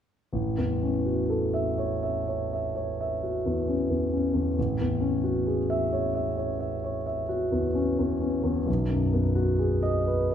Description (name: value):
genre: classical, impressionist solo piano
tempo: 41-46 BPM (dotted quarters)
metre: 9/8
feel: rubato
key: A major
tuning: A4 = 438 Hz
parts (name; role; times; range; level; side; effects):
- warm concert grand piano; solo; 0.3-10.3 s; A1 to E5; -24 LUFS; equal; none
room: wet recital hall reverb, RT60 1.6 s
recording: minimal, uncompressed stereo recording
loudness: -25 LUFS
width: side -9 dB against mid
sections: 0.3-10.3 A section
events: none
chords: 0.3 A6; 4.6 E69/A; 8.7 B6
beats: | 0.34 1.79 3.21 | 4.57 5.91 7.30 | 8.68 10.09